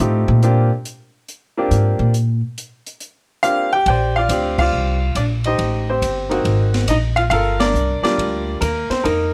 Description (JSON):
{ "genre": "jazz piano trio", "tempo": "139 BPM", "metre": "4/4", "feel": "swing 67% on 8ths", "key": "Bb major", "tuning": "A4 = 437 Hz", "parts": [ { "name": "clear upright piano", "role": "melody", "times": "0.0-9.3 s", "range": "G3 to G5", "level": "-21 LUFS", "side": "equal", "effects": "none" }, { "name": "upright bass", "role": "bass", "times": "0.0-9.3 s", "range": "G1 to Bb2", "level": "-21 LUFS", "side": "equal", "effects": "none" }, { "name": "open jazz drum kit", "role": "drums", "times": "0.0-9.2 s", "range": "crash cymbal, hi-hat, kick drum, ride cymbal, snare drum", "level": "-29 LUFS", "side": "equal", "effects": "none" } ], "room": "light reverb", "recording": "none", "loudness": "-18 LUFS", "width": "mono", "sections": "0.0-3.9 A section; 3.9-9.3 B section", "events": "upright bass solo 0.0-3.9; band accent 4.5, 7.5", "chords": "0.4 Bb69; 5.6 Am7b5; 6.4 Ab9; 7.3 Gm7" }